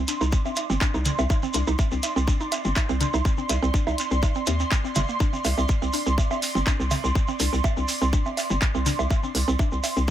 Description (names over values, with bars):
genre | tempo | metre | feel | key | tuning
minimal techno | 123 BPM | 4/4 | swing 53% on 16ths | unclear | A4 = 441 Hz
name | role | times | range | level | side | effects
hollow knocking FM bass | bass | 0.0-10.1 s | G1 to Eb2 | -25 LUFS | equal | sidechain pumping
airy breathy pad | texture | 0.0-10.1 s | C6 | -32 LUFS | right 1 dB | chorus, sidechain pumping
bubbling stepped-filter texture | texture | 0.2-10.1 s | D5 | -38 LUFS | right 10 dB | chorus, built-in reverb, sidechain pumping
mallet-like synth pluck | riff | 0.1-10.0 s | Bb3 to Eb4 | -30 LUFS | right 1 dB | chorus, sidechain pumping, analog delay
minimal click drum kit | drums | 0.1-9.9 s | handclaps, hi-hat | -30 LUFS | equal | dub echo
shekere | percussion | 0.1-10.1 s | none | -33 LUFS | right 2 dB | dub echo
electronic kick drum | drums | 0.3-10.1 s | none | -23 LUFS | equal | none
electronic bongos, woodblock and toms | percussion | 0.5-9.9 s | none | -31 LUFS | right 3 dB | overdrive, analog delay
room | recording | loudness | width
light reverb, digital ambience | echo-heavy mix | -21 LUFS | side -11 dB against mid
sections
0.0-10.1 A section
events
none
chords
0.0 C5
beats
0.33 0.81 | 1.30 1.79 2.28 2.76 | 3.25 3.74 4.23 4.71 | 5.20 5.69 6.18 6.67 | 7.15 7.64 8.13 8.62 | 9.11 9.59 10.08